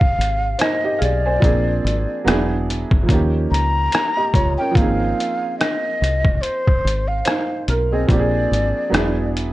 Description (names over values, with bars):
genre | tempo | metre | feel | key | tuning
lo-fi hip hop | 72 BPM | 4/4 | swing 57% on 16ths | Ab major | A4 = 440 Hz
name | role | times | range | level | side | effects
breathy mellow silver concert flute | melody | 0.0-9.3 s | C5 to Bb5 | -22 LUFS | left 1 dB | low-pass filter, analog delay
felt-muted upright piano | accompaniment | 0.0-9.5 s | C3 to Ab5 | -22 LUFS | right 2 dB | cassette tape, low-pass filter
deep dub fingered electric bass | bass | 0.0-9.5 s | E1 to Eb2 | -21 LUFS | equal | none
trip hop sampler-style drum kit | drums | 0.0-9.5 s | hi-hat, kick drum, rim click | -19 LUFS | equal | none
room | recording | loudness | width
light reverb | cassette tape | -16 LUFS | side -16 dB against mid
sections
0.0-9.5 A section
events
none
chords
0.0 Ab6; 1.4 Bb7; 2.3 E9; 3.1 Eb7; 4.8 Ab6; 8.1 Bb7; 8.9 E9